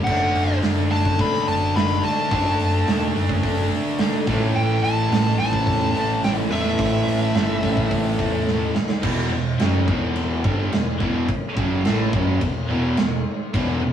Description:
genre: hard rock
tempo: 107 BPM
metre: 4/4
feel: straight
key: E dorian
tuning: A4 = 442 Hz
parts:
  - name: smooth overdriven lead guitar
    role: melody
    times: 0.0-8.4 s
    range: E5 to B5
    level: -24 LUFS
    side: left 2 dB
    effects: none
  - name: crunchy overdriven guitar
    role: riff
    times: 0.0-13.9 s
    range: E2 to D4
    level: -26 LUFS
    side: right 4 dB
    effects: none
  - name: high-gain distorted guitar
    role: riff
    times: 0.0-13.9 s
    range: E2 to D4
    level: -29 LUFS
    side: equal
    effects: distortion
  - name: overdriven semi-hollow guitar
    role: riff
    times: 0.0-13.9 s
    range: E2 to D4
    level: -27 LUFS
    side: left 4 dB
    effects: none
  - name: overdriven picked electric bass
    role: bass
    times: 0.1-13.9 s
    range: E1 to E2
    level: -26 LUFS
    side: equal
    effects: none
  - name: big rock drum kit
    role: drums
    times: 0.1-13.7 s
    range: crash cymbal, hi-hat, kick drum, snare drum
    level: -24 LUFS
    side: right 1 dB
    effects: none
room: moderate booth ambience, RT60 0.2 s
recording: rough rehearsal-room recording, small room ambience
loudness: -18 LUFS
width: side -9 dB against mid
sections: 0.0-9.0 A section; 9.0-13.9 B section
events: drum fill 8.5-9.0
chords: 0.1 D/F#; 4.3 A5; 9.0 Em

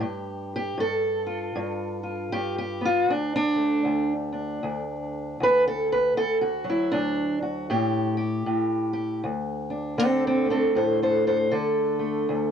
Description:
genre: acoustic country blues, solo or duo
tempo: 78 BPM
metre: 4/4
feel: swing 61% on 8ths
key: unclear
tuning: A4 = 440 Hz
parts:
  - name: fingerpicked steel-string acoustic guitar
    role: solo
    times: 0.0-12.5 s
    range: D2 to C5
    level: -23 LUFS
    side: equal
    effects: none
room: moderate booth ambience, RT60 0.3 s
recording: worn, warbling old tape, cassette tape, warbly pitch drift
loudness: -23 LUFS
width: side -8 dB against mid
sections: 0.0-9.2 A section; 9.2-12.5 A section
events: steel-string acoustic guitar solo 0.0-9.2, 9.2-12.5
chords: 0.0 G7(no3); 3.1 D; 7.7 Gsus2/A; 9.2 D7(no3)

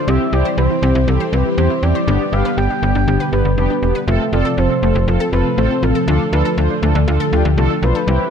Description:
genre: synth-pop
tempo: 120 BPM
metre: 4/4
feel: straight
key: D dorian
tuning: A4 = 440 Hz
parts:
  - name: expressive synth lead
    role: melody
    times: 0.0-8.3 s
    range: A4 to G5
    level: -22 LUFS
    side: equal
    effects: chorus, ping-pong delay
  - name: string machine, cellos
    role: sustained chords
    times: 0.0-8.3 s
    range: C3 to G4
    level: -21 LUFS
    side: equal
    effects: ensemble chorus
  - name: analog pluck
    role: arpeggios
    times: 0.0-8.2 s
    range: G3 to C5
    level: -25 LUFS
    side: left 5 dB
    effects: chorus, ping-pong delay
  - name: mellow synth brass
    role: accompaniment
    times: 0.1-8.2 s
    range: B3 to C5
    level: -20 LUFS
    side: right 1 dB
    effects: chorus
  - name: slap-like FM bass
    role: bass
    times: 0.1-8.2 s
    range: E1 to E2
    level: -16 LUFS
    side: equal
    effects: none
room: light reverb, digital ambience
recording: none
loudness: -14 LUFS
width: side -7 dB against mid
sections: 0.0-8.3 A section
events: none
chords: 0.1 C; 2.1 G; 4.1 F; 6.1 Dm

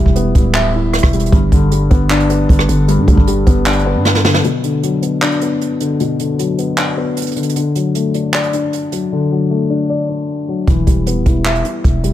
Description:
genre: hip hop, trap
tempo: 154 BPM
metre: 4/4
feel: half-time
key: B minor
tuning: A4 = 440 Hz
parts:
  - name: felt-muted upright piano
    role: accompaniment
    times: 0.0-12.1 s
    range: G2 to E5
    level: -16 LUFS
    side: left 2 dB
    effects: low-pass filter
  - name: growling 808-style bass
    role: bass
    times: 0.0-4.4, 10.7-12.1 s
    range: D1 to G2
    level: -16 LUFS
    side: equal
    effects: none
  - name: jazz brush drum kit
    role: drums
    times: 0.1-12.1 s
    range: handclaps, hi-hat, kick drum, rim click, snare drum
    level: -15 LUFS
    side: right 1 dB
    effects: none
room: small room ambience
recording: none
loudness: -12 LUFS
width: side -12 dB against mid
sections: 0.0-4.4 A section; 4.4-12.1 B section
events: drum fill 4.1-4.4; break 4.4-10.7; drums muted 9.1-10.7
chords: 0.0 Em; 1.3 G; 4.4 Bm; 7.6 D; 10.7 Em

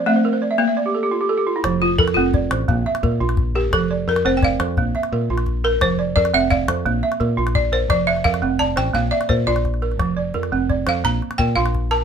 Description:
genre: west african traditional, West African string and xylophone music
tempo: 115 BPM (dotted quarters)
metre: 12/8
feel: straight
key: F major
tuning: A4 = 442 Hz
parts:
  - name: balafon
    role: melody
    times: 0.0-12.0 s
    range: A3 to Bb5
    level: -20 LUFS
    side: left 2 dB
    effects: none
  - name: balafon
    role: arpeggios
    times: 0.0-12.0 s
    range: F3 to F5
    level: -21 LUFS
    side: right 6 dB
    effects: none
  - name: fingered electric bass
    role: bass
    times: 1.6-12.0 s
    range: F1 to Bb2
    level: -23 LUFS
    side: left 1 dB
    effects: none
  - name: calabash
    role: percussion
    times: 1.6-11.8 s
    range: none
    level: -24 LUFS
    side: left 2 dB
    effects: none
room: moderate small room reverb, RT60 0.5 s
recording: minimal, uncompressed stereo recording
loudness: -17 LUFS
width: side -7 dB against mid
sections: 0.0-1.6 A section; 1.6-12.0 B section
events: balafon fill 0.0-1.6; balafon solo 1.6-12.0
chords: 0.0 F (rootless); 0.6 Bb5; 1.6 F; 2.7 Bb; 3.7 F; 4.8 Bb; 5.8 F5; 6.9 Bb; 7.9 F; 8.9 Bb; 10.0 F5; 11.0 Bb

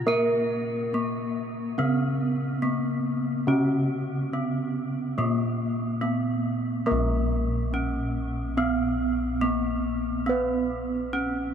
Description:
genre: Javanese gamelan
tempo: 70 BPM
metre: 4/4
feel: straight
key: unclear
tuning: A4 = 442 Hz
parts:
  - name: gamelan-type bronze metallophone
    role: melody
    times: 0.0-11.5 s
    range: Bb3 to Bb4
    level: -28 LUFS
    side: equal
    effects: none
  - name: gamelan-type bronze metallophone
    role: accompaniment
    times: 0.0-11.5 s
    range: Db3-30c to Cb4+20c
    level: -30 LUFS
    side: right 2 dB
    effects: none
  - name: gamelan-type bossed gongs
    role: bass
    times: 0.0-11.5 s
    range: Bb1 to Cb5+20c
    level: -28 LUFS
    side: equal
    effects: none
room: moderate huge ambient reverb, RT60 9.7 s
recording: in a vast, echoing space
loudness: -24 LUFS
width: side -8 dB against mid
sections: 0.0-6.9 A section; 6.9-11.5 A section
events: none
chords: none

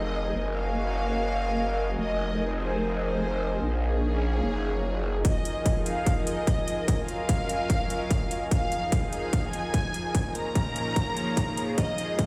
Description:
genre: heavy wobble dubstep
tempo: 147 BPM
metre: 4/4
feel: half-time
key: F phrygian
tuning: A4 = 440 Hz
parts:
  - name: warm chamber violin section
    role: melody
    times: 0.0-12.3 s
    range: Ab4 to Bb5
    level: -35 LUFS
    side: equal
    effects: low-pass filter, dub echo
  - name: supersaw pad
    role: sustained chords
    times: 0.0-12.3 s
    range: F2 to Bb4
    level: -37 LUFS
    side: equal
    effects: sidechain pumping
  - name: growl bass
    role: bass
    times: 0.0-5.2 s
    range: F1 to Bb1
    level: -31 LUFS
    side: equal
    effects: chorus, overdrive
  - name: airy breathy pad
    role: texture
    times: 0.0-12.3 s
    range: Gb3 to Ab5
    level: -36 LUFS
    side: equal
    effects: chorus, sidechain pumping
  - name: electronic hi-hat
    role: drums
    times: 5.2-12.3 s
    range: none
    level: -39 LUFS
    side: equal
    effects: low-pass filter on hats, studio reverb
  - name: electronic kick drum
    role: drums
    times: 5.2-12.3 s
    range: none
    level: -29 LUFS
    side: equal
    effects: distortion, studio reverb
  - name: riser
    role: sound effects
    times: 12.1-12.3 s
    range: none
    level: -45 LUFS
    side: equal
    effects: none
room: light reverb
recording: played on a big sound system in a bare room, stone room reverb, high-pass filter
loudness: -27 LUFS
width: mono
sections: 0.0-5.2 A section; 5.2-12.3 B section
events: build-up 5.2-12.3; filter sweep on violin section 5.2-12.3; filter sweep 5.2-12.3; drum fill 11.8-12.3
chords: 0.4 Gb; 2.0 Fm7; 3.6 Bbm; 4.4 Gb; 5.2 Fm7; 6.9 Gb; 8.5 Fm7; 10.1 Bbm

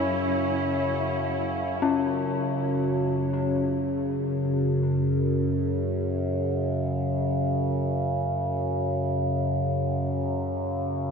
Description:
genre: dark ambient drone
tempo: free time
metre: none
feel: none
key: unclear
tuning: A4 = 439 Hz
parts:
  - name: dark studio cello section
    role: sustained chords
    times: 0.0-1.8 s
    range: F#3 to E4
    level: -31 LUFS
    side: right 1 dB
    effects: none
  - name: dark detuned synth bell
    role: arpeggios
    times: 0.0-11.1 s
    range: C#4 to F#4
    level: -31 LUFS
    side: left 6 dB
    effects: chorus, tape echo
  - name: overtone-sweeping drone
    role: drone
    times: 0.0-11.1 s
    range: F#2 to C#3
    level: -25 LUFS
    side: equal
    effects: chorus, built-in reverb
room: wet huge ambient reverb, RT60 7.9 s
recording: none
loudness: -24 LUFS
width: side -5 dB against mid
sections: 0.0-1.8 A section; 1.8-11.1 B section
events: fade-out on synth bell 1.8-11.1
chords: 0.0 F#5

